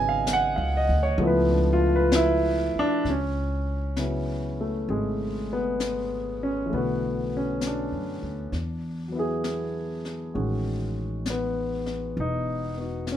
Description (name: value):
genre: jazz ballad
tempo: 66 BPM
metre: 4/4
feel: swing 68% on 8ths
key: C# minor from 3.1 s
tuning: A4 = 441 Hz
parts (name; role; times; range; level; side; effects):
- warm concert grand piano; accompaniment; 0.0-13.2 s; C#3 to G#5; -25 LUFS; equal; none
- upright bass; bass; 0.0-13.2 s; E1 to F#2; -29 LUFS; equal; none
- jazz brush drum kit; drums; 0.3-13.2 s; brushed snare drum, hi-hat, snare drum; -31 LUFS; left 3 dB; none
room: light reverb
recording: minimal, uncompressed stereo recording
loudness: -24 LUFS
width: side -10 dB against mid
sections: 0.0-3.1 A section; 3.1-13.2 B section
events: none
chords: 0.0 G#m7; 1.2 C#7alt; 3.1 C#m7; 6.7 Bm7; 8.5 E7; 10.3 A69